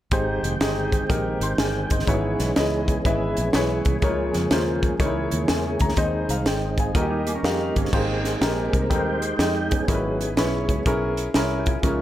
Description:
uptempo gospel; 123 BPM; 4/4; swing 66% on 8ths; Ab major; A4 = 441 Hz
warm concert grand piano; accompaniment; 0.1-12.0 s; Ab2 to C6; -25 LUFS; left 1 dB; analog delay
tonewheel organ; sustained chords; 0.1-12.0 s; Eb3 to G5; -28 LUFS; right 1 dB; slow rotary speaker, chorus vibrato
fingered electric bass; bass; 0.1-12.0 s; F1 to F2; -28 LUFS; equal
crisp fusion drum kit; drums; 0.1-12.0 s; crash cymbal, hi-hat, kick drum, snare drum; -24 LUFS; equal; analog delay
mellow electric guitar; second line; 7.0-7.9 s; G3 to Bb4; -35 LUFS; right 4 dB; analog delay
light reverb, small room ambience; echo-heavy mix; -20 LUFS; side -13 dB against mid
0.1-7.9 A section; 7.9-12.0 B section
tonewheel organ solo 7.9-12.0
0.1 Abmaj7; 2.1 E6/G#; 4.0 Db6; 5.0 Dbm6; 6.0 Ab; 7.0 Eb; 7.9 Abmaj7; 9.9 E6/G#

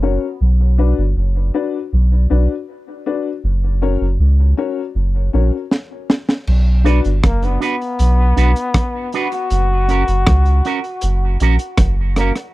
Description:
dub reggae; 79 BPM; 4/4; straight; B harmonic minor; A4 = 438 Hz
dark upright piano; stabs; 0.0-7.1 s; C#4 to D5; -23 LUFS; left 7 dB; low-pass filter, dub echo
soft dub sub bass; bass; 0.0-12.3 s; F#1 to C#2; -14 LUFS; equal
crunchy breakbeat drum kit; drums; 5.7-12.5 s; crash cymbal, hi-hat, kick drum, rim click, snare drum; -17 LUFS; equal
electric guitar with an envelope filter; accompaniment; 6.8-12.3 s; C#4 to B4; -23 LUFS; right 8 dB; low-pass filter, dub echo
breathy trombone; melody; 7.3-12.3 s; A#3 to F#4; -22 LUFS; left 3 dB; low-pass filter, dub echo
little or no reverb; dry, close 1970s-style studio recording; -14 LUFS; side -18 dB against mid
0.0-6.5 A section; 6.5-12.5 B section
break 0.0-6.5; drum fill 5.7-6.5
0.4 Bm; 3.4 F#; 6.5 Bm; 9.5 F#

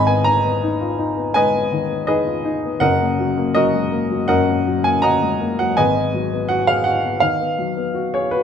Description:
classical, romantic character piece for solo piano; 82 BPM; 4/4; rubato; A4 = 441 Hz
warm baby grand piano; solo; 0.0-8.4 s; Gb1 to Bb5; -16 LUFS; left 1 dB
moderate recital hall reverb, RT60 1.8 s; close, detailed microphones; -16 LUFS; side -7 dB against mid
0.0-8.4 A section
0.0 Abm; 2.8 Ebm/Gb; 5.8 Abm7

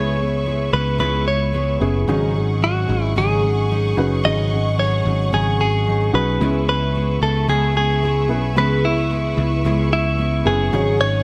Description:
pop; 111 BPM; 4/4; swing 56% on 16ths; C# minor; A4 = 440 Hz
direct-recorded clean electric guitar; melody; 0.0-11.2 s; E4 to D#5; -24 LUFS; equal
dark upright piano; accompaniment; 0.0-11.2 s; G#2 to C#5; -29 LUFS; equal
clear symphonic string section; sustained chords; 0.0-11.2 s; G#4 to C#6; -33 LUFS; equal
fingerpicked steel-string acoustic guitar; riff; 0.0-11.2 s; G#2 to G#4; -28 LUFS; equal
picked electric bass; bass; 0.0-11.2 s; F#1 to C#2; -22 LUFS; equal
light reverb, small room ambience; -19 LUFS; mono
0.0-6.4 A section; 6.4-11.2 A section
0.0 C#m7; 2.1 G#7sus4; 6.4 C#m7; 10.7 G#7sus4

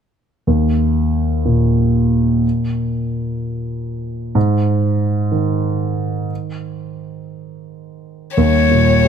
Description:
neoclassical piano and strings; 55-64 BPM (dotted quarters); 6/8; rubato; A4 = 441 Hz
warm concert grand piano; accompaniment; 0.5-9.1 s; Eb2 to G4; -16 LUFS; right 1 dB
rich violin; melody; 8.4-9.1 s; Db5; -15 LUFS; left 6 dB
warm cello; second line; 8.4-9.1 s; G3; -23 LUFS; right 6 dB
light reverb; -15 LUFS; side -8 dB against mid
0.5-8.4 A section
0.5 Eb5; 4.4 Ab5; 8.4 Eb7

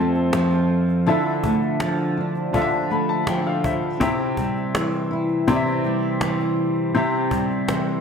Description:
acoustic pop; 82 BPM; 4/4; straight; C major; A4 = 440 Hz
flamenco guitar; accompaniment; 0.0-8.0 s; F2 to G4; -21 LUFS; equal; double-tracked left and right
warm upright piano; accompaniment; 0.0-8.0 s; C4 to B5; -26 LUFS; left 4 dB
cajon; drums; 0.2-8.0 s; -29 LUFS; equal
moderate plate reverb, RT60 1.6 s, studio reverb; bright 1980s-style digital production; -19 LUFS; side -6 dB against mid
0.0-8.0 A section
upright piano fill 2.5-4.0
0.0 F; 1.1 Dmadd9; 4.0 C

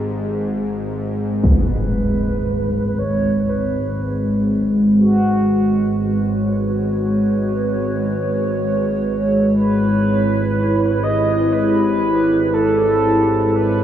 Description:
dark ambient drone; free time; G# minor; A4 = 439 Hz
mellow horn-like synth lead; melody; 0.0-13.8 s; F#4 to D#5; -23 LUFS; right 2 dB; lush chorus, tape echo
bowed-like drone; drone; 0.0-13.8 s; G#1 to G#2; -20 LUFS; left 1 dB; built-in reverb
impact; percussion; 1.4-1.6 s; -21 LUFS; equal; low-pass filter on sfx
dark analog pad; sustained chords; 4.1-13.8 s; G#3 to C#5; -18 LUFS; right 1 dB; chorus, phaser
wet cathedral reverb, RT60 5.5 s; in a vast, echoing space, small room reverb; -15 LUFS; side -10 dB against mid
0.0-1.4 A section; 1.4-13.8 B section
0.0 N.C.; 1.4 G#m7; 9.5 Em

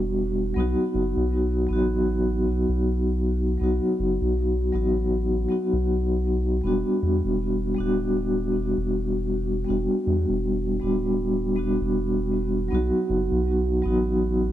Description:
trip hop; 79 BPM; 4/4; swing 59% on 16ths; E minor; A4 = 442 Hz
vibraphone with soft mallets; accompaniment; 0.0-14.5 s; F#3 to F#4; -23 LUFS; equal; tremolo, vintage 12-bit sampler grit, tape echo
soft dub sub bass; bass; 0.0-14.5 s; D1 to E2; -27 LUFS; equal
light reverb, small room ambience; -22 LUFS; side -12 dB against mid
0.0-14.5 A section
0.0 Em7; 0.6 B; 6.6 Em7; 12.7 B

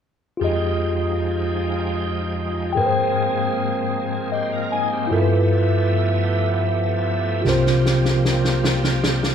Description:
slow gospel; 51 BPM (dotted quarters); 6/8; straight; F minor; A4 = 441 Hz
mellow tine electric piano; accompaniment; 0.4-9.3 s; C2 to Ab5; -19 LUFS; equal; medium stereo tremolo
bright tonewheel organ; sustained chords; 0.4-9.3 s; F3 to G5; -27 LUFS; right 2 dB; fast rotary speaker, overdrive, chorus vibrato
mellow French horn section; sustained chords; 0.4-9.3 s; F3 to E5; -30 LUFS; right 1 dB
snare drum; drums; 7.5-9.3 s; -23 LUFS; equal
wet recital hall reverb, RT60 1.5 s; recorded in a church or concert hall; -18 LUFS; side -8 dB against mid
0.4-9.3 A section
tine electric piano fill 3.9-5.1; drum fill 7.5-9.3
0.4 Fm9; 2.8 Abmaj9; 5.1 G13; 7.5 C7sus4

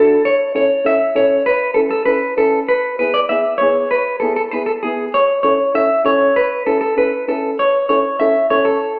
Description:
latin; 196 BPM; 4/4; straight; A major; A4 = 440 Hz
clean electric guitar; melody; 0.0-9.0 s; G#4 to E5; -14 LUFS; equal; spring reverb, slapback echo, plate reverb
dark upright piano; accompaniment; 0.0-8.7 s; B3 to A4; -19 LUFS; equal
wet studio reverb, RT60 0.8 s; heard from further back in the room, small speaker sound; -13 LUFS; side -30 dB against mid
0.2-9.0 A section
0.2 A; 2.7 E; 5.1 A

